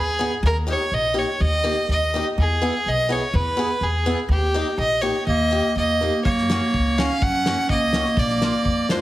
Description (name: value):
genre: alpine folk, alpine dance band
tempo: 124 BPM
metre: 2/4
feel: straight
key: unclear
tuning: A4 = 440 Hz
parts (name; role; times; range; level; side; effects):
- clear fiddle; melody; 0.0-9.0 s; G4 to F#5; -22 LUFS; equal; none
- upright bass; bass; 0.0-9.0 s; A#1 to F#2; -24 LUFS; equal; none
- picked swing-style acoustic guitar; accompaniment; 0.2-9.0 s; A#3 to G#4; -27 LUFS; left 2 dB; none
- bright clarinet; second line; 5.3-9.0 s; G#3 to C#4; -23 LUFS; right 2 dB; none
- loose indie drum kit; drums; 6.3-9.0 s; hi-hat, kick drum, snare drum; -25 LUFS; equal; none
room: moderate recital hall reverb, RT60 1.7 s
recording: heavily compressed radio sound, multiband compression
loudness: -18 LUFS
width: side -15 dB against mid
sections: 0.0-9.0 A section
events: none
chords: 0.4 D#; 2.4 E; 4.3 D#; 6.3 F#; 8.2 A#